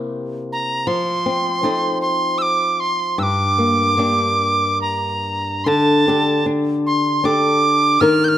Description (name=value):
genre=celtic folk, Celtic slow air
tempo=68-81 BPM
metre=3/4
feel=rubato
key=unclear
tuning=A4 = 440 Hz
part: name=flamenco guitar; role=accompaniment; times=0.0-8.4 s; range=G2 to Bb4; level=-19 LUFS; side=left 2 dB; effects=none
part: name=bright tin whistle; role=melody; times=0.5-8.4 s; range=A5 to G6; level=-18 LUFS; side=right 2 dB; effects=none
room=moderate recital hall reverb, RT60 1.6 s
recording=none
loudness=-16 LUFS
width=side -11 dB against mid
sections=0.0-5.7 A section; 5.7-8.4 B section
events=none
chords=0.0 C7; 0.9 F7; 3.2 Gm; 5.7 Dsus4